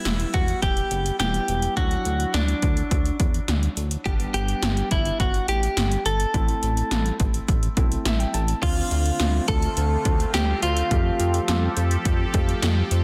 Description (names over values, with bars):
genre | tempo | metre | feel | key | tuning
synth-pop | 105 BPM | 4/4 | straight | A dorian | A4 = 440 Hz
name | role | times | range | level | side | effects
direct-recorded clean electric guitar | melody | 0.0-11.7 s | D4 to A4 | -29 LUFS | equal | digital delay
clear grand piano | accompaniment | 0.0-13.0 s | F#3 to A5 | -35 LUFS | equal | none
chorused synth bass | bass | 0.1-13.0 s | E1 to F2 | -26 LUFS | equal | none
80s electronic pad drums | drums | 0.1-13.0 s | crash cymbal, hi-hat, kick drum, snare drum | -27 LUFS | equal | overdrive
sweeping resonant pad | sustained chords | 8.6-13.0 s | D3 to A4 | -33 LUFS | equal | chorus
room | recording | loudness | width
light reverb, digital ambience | dense, heavily limited modern master | -23 LUFS | mono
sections
0.0-8.6 A section; 8.6-13.0 B section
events
grand piano fill 7.8-8.6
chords
0.0 Em; 1.8 Dadd9; 4.1 G; 6.3 Am; 8.6 Dm7; 10.9 Fadd9